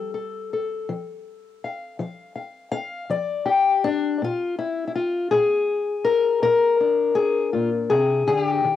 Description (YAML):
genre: acoustic country blues, solo or duo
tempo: 54 BPM (dotted quarters)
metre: 12/8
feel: straight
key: unclear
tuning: A4 = 440 Hz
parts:
  - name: fingerpicked old ladder-braced acoustic guitar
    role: solo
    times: 0.0-8.8 s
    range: Bb2 to F5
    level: -20 LUFS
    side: left 4 dB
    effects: cassette tape
room: light reverb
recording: home recording on cassette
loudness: -20 LUFS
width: side -11 dB against mid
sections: 0.0-4.2 A section; 4.2-8.8 B section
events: steel-string acoustic guitar solo 0.0-4.2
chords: 0.0 F; 4.2 Bb7